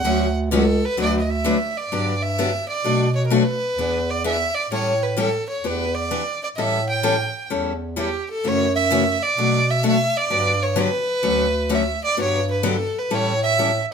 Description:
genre	acoustic string swing (jazz manouche)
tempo	128 BPM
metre	4/4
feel	swing 63% on 8ths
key	D major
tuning	A4 = 442 Hz
part	rich violin	melody	0.0-13.9 s	G4 to G5	-22 LUFS	right 2 dB	none
part	picked steel-string acoustic guitar	accompaniment	0.0-13.7 s	B2 to B4	-23 LUFS	left 4 dB	none
part	mellow bass clarinet	bass	0.0-13.9 s	C#2 to B2	-24 LUFS	right 1 dB	none
room	moderate studio reverb, RT60 0.7 s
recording	minimal, uncompressed stereo recording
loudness	-18 LUFS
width	side -6 dB against mid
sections	1.0-13.9 A section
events	none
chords	0.0 Dmaj7; 1.0 D6; 1.9 Gmaj7; 2.8 Bm7; 3.8 E7; 4.7 A7; 5.6 Em7; 6.6 A7; 8.4 F#m7; 9.4 Bm7; 10.3 Gmaj7; 11.2 Dmaj7; 12.2 Gmaj7; 13.1 A7

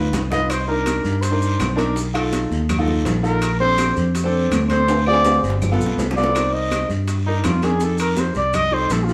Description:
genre	Afro-Cuban jazz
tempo	164 BPM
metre	4/4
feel	straight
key	unclear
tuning	A4 = 440 Hz
part	warm grand piano	accompaniment	0.0-9.1 s	B3 to B4	-26 LUFS	equal	none
part	fingered electric bass	bass	0.0-9.1 s	G1 to G2	-24 LUFS	equal	none
part	bongos	percussion	0.1-9.1 s	none	-34 LUFS	equal	none
part	congas	percussion	0.1-9.1 s	none	-32 LUFS	equal	none
part	guiro	percussion	0.1-9.1 s	none	-39 LUFS	equal	none
part	maracas	percussion	0.1-9.1 s	none	-41 LUFS	equal	none
part	timbales	percussion	0.1-9.1 s	none	-31 LUFS	equal	none
part	breathy trumpet	melody	0.3-9.1 s	Eb4 to Eb5	-23 LUFS	equal	none
part	claves	percussion	0.5-8.7 s	none	-38 LUFS	equal	none
room	moderate stone room reverb, RT60 0.9 s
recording	band playing live in one room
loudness	-19 LUFS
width	mono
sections	0.0-6.3 A section; 6.3-9.1 A section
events	drum fill 0.0-0.5, 4.9-6.3; trumpet solo 0.0-9.1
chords	0.0 G7b13 (rootless); 0.5 Cm7; 2.0 B7#11; 3.4 Bbmaj9; 4.9 Dm7b5; 5.6 G7; 6.3 Cm9; 7.8 F7

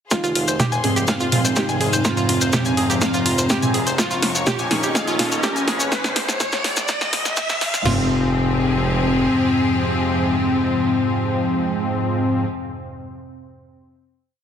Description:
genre	melodic techno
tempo	124 BPM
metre	4/4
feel	straight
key	F minor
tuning	A4 = 441 Hz
part	fat analog lead	melody	0.1-12.4 s	C4 to F4	-25 LUFS	left 2 dB	analog chorus, sidechain pumping, ping-pong delay
part	clear studio string section	sustained chords	0.1-12.4 s	F3 to Db6	-28 LUFS	left 3 dB	sidechain pumping
part	analog pluck	arpeggios	0.1-8.1 s	F4 to Ab5	-24 LUFS	right 2 dB	chorus, sidechain pumping, dub echo
part	analog drone	drone	0.4-12.4 s	F2 to C3	-31 LUFS	equal	chorus, sidechain pumping
part	techno drum kit	drums	0.1-8.0 s	crash cymbal, kick drum, snare drum, toms	-25 LUFS	right 1 dB	overdrive, high-pass filter on kick, small room reverb, high-pass filter on snare, high-pass filter on toms, high-pass filter on cymbals
part	techno drum kit	drums	0.1-7.8 s	hi-hat, snare drum, toms	-23 LUFS	equal	overdrive, small room reverb
part	maracas	percussion	0.1-7.8 s	none	-26 LUFS	left 2 dB	none
part	riser	sound effects	2.1-7.9 s	none	-27 LUFS	equal	none
part	gritty driven synth bass	bass	0.2-9.3 s	F1 to Bb2	-27 LUFS	equal	sidechain pumping, high-pass filter
part	analog synth brass	stabs	0.8-12.4 s	Ab2 to Db4	-23 LUFS	right 1 dB	chorus, sidechain pumping, dub echo
room	moderate concert hall reverb, RT60 1.9 s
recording	heavily compressed radio sound, multiband compression, high-pass filter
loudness	-17 LUFS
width	side -8 dB against mid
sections	0.1-7.9 build; 7.9-11.7 final chord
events	build-up 0.1-7.9; drum fill 0.1-7.9; filter sweep on analog synth lead 0.1-5.9; filter sweep on analog polysynth 0.1-5.9; filter sweep 0.1-7.9; riser 2.1-7.9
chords	0.1 Fm; 4.0 Bbm; 7.9 Fm

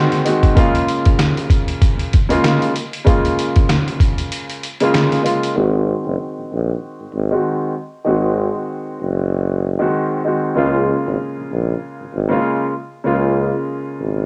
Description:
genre	hip hop, boom-bap hip-hop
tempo	96 BPM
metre	4/4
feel	swing 57% on 16ths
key	Db major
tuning	A4 = 439 Hz
part	warm concert grand piano	accompaniment	0.0-14.3 s	Db3 to Gb4	-21 LUFS	equal	cassette tape, high-pass filter, low-pass filter
part	trip hop sampler-style drum kit	drums	0.1-5.6 s	hi-hat, kick drum, rim click, snare drum	-18 LUFS	equal	cassette tape
part	warm tuba	bass	5.6-14.3 s	Gb1 to Db2	-21 LUFS	equal	tube saturation
room	light reverb, small room ambience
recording	home recording on cassette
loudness	-18 LUFS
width	mono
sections	0.0-5.6 A section; 5.6-14.3 B section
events	break 4.3-5.6; filter sweep on grand piano 5.6-14.3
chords	0.0 Ab7; 0.6 Db6; 5.6 Ab7; 10.6 Db6

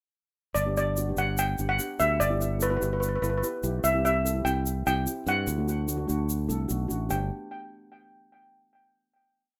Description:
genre	calypso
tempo	147 BPM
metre	4/4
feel	straight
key	G major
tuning	A4 = 441 Hz
part	steel pan	melody	0.5-7.3 s	B4 to G5	-30 LUFS	equal	analog delay
part	modern bright fingered electric bass	bass	0.6-7.3 s	G1 to G2	-32 LUFS	equal	none
part	egg shaker	percussion	0.6-7.3 s	none	-38 LUFS	equal	none
part	steel pan	accompaniment	0.7-7.3 s	A3 to A4	-36 LUFS	equal	none
room	wet studio reverb, RT60 0.5 s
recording	rough home demo mix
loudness	-27 LUFS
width	mono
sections	0.6-7.1 verse; 7.1-8.7 final chord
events	none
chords	0.6 Gmaj7; 2.2 Em7/G; 3.8 C; 5.5 D; 7.1 G

